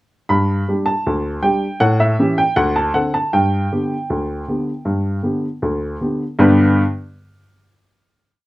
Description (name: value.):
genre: ragtime piano.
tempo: 79 BPM.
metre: 2/4.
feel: straight.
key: G major.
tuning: A4 = 441 Hz.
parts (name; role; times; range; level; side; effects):
warm upright piano; solo; 0.3-6.8 s; D2 to B5; -15 LUFS; equal; none.
room: light reverb.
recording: none.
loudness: -15 LUFS.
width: side -18 dB against mid.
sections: 0.3-6.4 A section; 6.4-7.9 final chord.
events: none.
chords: 0.3 G5; 1.8 A7; 2.6 D5; 3.3 G.